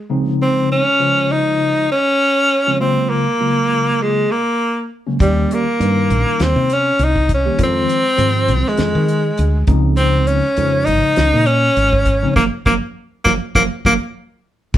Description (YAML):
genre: electric jazz fusion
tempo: 100 BPM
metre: 4/4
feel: swing 55% on 16ths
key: unclear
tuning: A4 = 440 Hz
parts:
  - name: breathy tenor saxophone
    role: melody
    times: 0.0-13.9 s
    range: G3 to Eb4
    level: -15 LUFS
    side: equal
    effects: none
  - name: tine electric piano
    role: accompaniment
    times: 0.1-14.0 s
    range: Db3 to C5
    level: -20 LUFS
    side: equal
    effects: medium stereo tremolo
  - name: woody fretless electric bass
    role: bass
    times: 5.2-14.8 s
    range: Gb1 to Eb3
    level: -18 LUFS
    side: equal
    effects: none
  - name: damped 70s drum kit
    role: drums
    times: 5.2-14.8 s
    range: crash cymbal, hi-hat, kick drum, snare drum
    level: -19 LUFS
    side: equal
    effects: none
room: moderate studio reverb, RT60 0.7 s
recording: band playing live in one room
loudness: -13 LUFS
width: side -12 dB against mid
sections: 0.0-14.7 A section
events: band accent 12.4-14.7; drum fill 14.2-14.7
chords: 0.1 Dbmaj9; 2.8 Gbmaj9; 5.2 Eb7; 7.6 Fm7; 9.7 Dbmaj9; 12.4 Gbmaj7